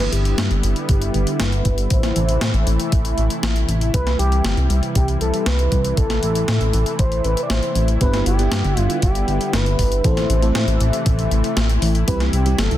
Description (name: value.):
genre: synthwave.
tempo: 118 BPM.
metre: 4/4.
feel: straight.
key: A minor.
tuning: A4 = 441 Hz.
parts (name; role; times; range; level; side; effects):
expressive synth lead; melody; 0.0-12.8 s; G4 to D5; -25 LUFS; equal; chorus, ping-pong delay.
warm analog pad; sustained chords; 0.0-12.8 s; C3 to E4; -24 LUFS; equal; chorus, sidechain pumping.
chorused synth bass; bass; 0.0-12.8 s; G1 to A2; -19 LUFS; equal; tube saturation.
clean 12-bit digital drum machine; drums; 0.0-12.8 s; hi-hat, snare drum; -25 LUFS; left 2 dB; none.
electronic kick drum; drums; 0.9-12.2 s; none; -19 LUFS; equal; none.
FM electric piano with soft pad layer; stabs; 8.0-12.6 s; G3 to A4; -26 LUFS; right 2 dB; chorus, tape echo.
room: light reverb, digital ambience.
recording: dense, heavily limited modern master.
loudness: -16 LUFS.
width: side -13 dB against mid.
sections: 0.0-12.8 A section.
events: none.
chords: 0.0 G6; 1.9 Am; 3.9 C; 6.0 Am; 8.0 G6; 10.0 Am; 12.1 C.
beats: 0.38 0.89 1.40 | 1.91 2.42 2.92 3.43 | 3.94 4.45 4.96 5.47 | 5.97 6.48 6.99 7.50 | 8.01 8.52 9.03 9.53 | 10.04 10.55 11.06 11.57 | 12.08 12.59.